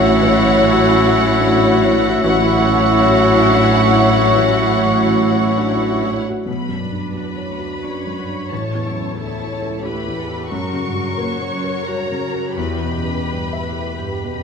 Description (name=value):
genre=cinematic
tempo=84-91 BPM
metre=3/4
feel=rubato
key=unclear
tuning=A4 = 440 Hz
part: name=warm studio violin section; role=melody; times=0.0-14.4 s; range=F#5 to C#6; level=-23 LUFS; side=left 4 dB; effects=none
part: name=clear clarinet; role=second line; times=0.0-6.1 s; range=F#4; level=-23 LUFS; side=left 2 dB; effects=none
part: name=small flute group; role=second line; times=0.0-6.1 s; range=C#6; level=-23 LUFS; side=right 4 dB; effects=none
part: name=warm oboe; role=second line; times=0.0-6.1 s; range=E5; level=-22 LUFS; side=right 1 dB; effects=none
part: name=warm studio violin section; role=second line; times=0.0-14.4 s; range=A#4 to C#5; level=-25 LUFS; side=left 2 dB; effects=none
part: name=felt-muted upright piano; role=accompaniment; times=0.0-14.4 s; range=A1 to E5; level=-22 LUFS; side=left 1 dB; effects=none
part: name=rich studio viola section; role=accompaniment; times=0.0-14.4 s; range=D4 to C#5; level=-26 LUFS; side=right 2 dB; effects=none
part: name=dark French horn section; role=sustained chords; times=0.0-6.1 s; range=F#3 to C#4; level=-21 LUFS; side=left 4 dB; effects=none
part: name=concert harp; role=arpeggios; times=0.0-2.1, 6.5-14.4 s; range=E2 to G5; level=-30 LUFS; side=left 4 dB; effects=none
part: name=dark studio cello section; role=bass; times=0.0-14.4 s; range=C#2 to B2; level=-23 LUFS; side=right 5 dB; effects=none
part: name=warm studio double bass section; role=bass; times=0.0-6.2 s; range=A1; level=-20 LUFS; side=right 1 dB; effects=none
room=wet scoring stage reverb, RT60 1.7 s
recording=none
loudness=-14 LUFS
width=side -6 dB against mid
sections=0.0-6.5 A section; 6.5-14.4 B section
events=none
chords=0.0 A6; 6.5 Bmadd9; 8.5 A; 10.5 F#; 12.6 Emadd9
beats=| 0.24 0.91 1.58 | 2.26 2.94 3.64 | 4.35 5.05 5.76 | 6.47 7.16 7.84 | 8.52 9.18 9.85 | 10.51 11.18 11.87 | 12.57 13.27 13.98